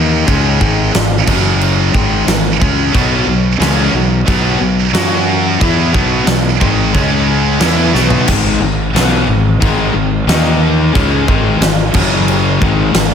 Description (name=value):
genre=hard rock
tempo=90 BPM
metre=4/4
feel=straight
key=G# minor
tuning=A4 = 444 Hz
part: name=heavy high-gain guitar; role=riff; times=0.0-8.3 s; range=F#2 to F#4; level=-18 LUFS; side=right 10 dB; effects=distortion
part: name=overdriven electric guitar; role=riff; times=0.0-13.1 s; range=F#2 to F#4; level=-16 LUFS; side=left 8 dB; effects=none
part: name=fuzz fingered electric bass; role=bass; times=0.0-13.1 s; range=F#1 to F#2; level=-16 LUFS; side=right 1 dB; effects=overdrive
part: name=huge arena drum kit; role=drums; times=0.3-13.1 s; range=crash cymbal, kick drum, snare drum, toms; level=-16 LUFS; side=right 1 dB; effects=none
part: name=high-gain distorted guitar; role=riff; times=2.9-13.1 s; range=F#2 to F#4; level=-19 LUFS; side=equal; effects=distortion, slapback echo
room=moderate lush hall reverb, RT60 2.9 s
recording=big arena sound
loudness=-10 LUFS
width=side -7 dB against mid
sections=0.0-8.3 A section; 8.3-13.1 A section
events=drum fill 7.9-8.3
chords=0.3 G#5; 1.3 F#5; 1.9 G#5; 2.9 B5; 4.9 F#5; 5.6 B5; 6.9 C#5; 7.6 B5; 8.3 G#m; 10.3 D#5; 10.9 G#5; 11.9 F#5; 12.6 G#5